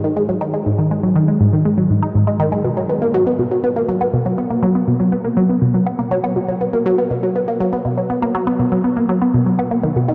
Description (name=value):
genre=ambient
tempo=121 BPM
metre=4/4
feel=straight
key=unclear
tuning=A4 = 442 Hz
part: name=resonant blip pluck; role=solo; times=0.0-10.1 s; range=G#2 to D#4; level=-17 LUFS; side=equal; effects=phaser, analog delay
room=wet huge ambient reverb, RT60 7.1 s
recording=dark, warm production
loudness=-17 LUFS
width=mono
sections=0.0-10.1 A section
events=none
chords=none